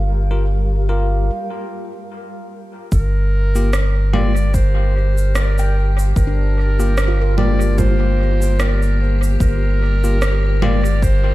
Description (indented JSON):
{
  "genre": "ambient dub",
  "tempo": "74 BPM",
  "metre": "4/4",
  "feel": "swing 56% on 16ths",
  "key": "G minor",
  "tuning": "A4 = 440 Hz",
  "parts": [
    { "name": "granular cloud pad", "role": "sustained chords", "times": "0.0-11.3 s", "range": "G3 to F5", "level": "-31 LUFS", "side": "right 1 dB", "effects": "built-in reverb" },
    { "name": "handpan", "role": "arpeggios", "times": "0.0-10.5 s", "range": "D4 to G5", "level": "-32 LUFS", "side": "right 2 dB", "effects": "dub echo" },
    { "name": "soft dub sub bass", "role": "bass", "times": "0.0-11.3 s", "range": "G1", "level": "-16 LUFS", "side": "equal", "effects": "tube saturation" },
    { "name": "bell-like tine electric piano", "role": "stabs", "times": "0.3-10.8 s", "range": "Bb3 to Bb4", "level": "-26 LUFS", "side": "left 4 dB", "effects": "dub echo" },
    { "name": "warm clarinet", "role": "melody", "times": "2.9-11.3 s", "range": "Bb4 to D5", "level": "-25 LUFS", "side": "right 2 dB", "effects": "dub echo" },
    { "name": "electronic kick drum", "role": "drums", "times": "2.9-11.2 s", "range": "none", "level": "-19 LUFS", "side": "equal", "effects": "overdrive" },
    { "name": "electronic shaker, rim click and congas", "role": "drums", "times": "2.9-11.2 s", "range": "none", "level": "-25 LUFS", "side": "right 1 dB", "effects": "overdrive, low-pass filter on perc, low-pass filter on snare, low-pass filter on room, dub echo" }
  ],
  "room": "little or no reverb",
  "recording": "none",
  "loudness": "-14 LUFS",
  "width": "side -17 dB against mid",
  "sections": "0.0-2.9 A section; 2.9-11.3 B section",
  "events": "filter sweep on tine electric piano 0.0-2.9; break 1.3-2.9",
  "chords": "0.0 Gm7",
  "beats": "0.48 1.30 2.11 | 2.92 3.73 4.54 5.35 | 6.16 6.97 7.78 8.59 | 9.40 10.21 11.03"
}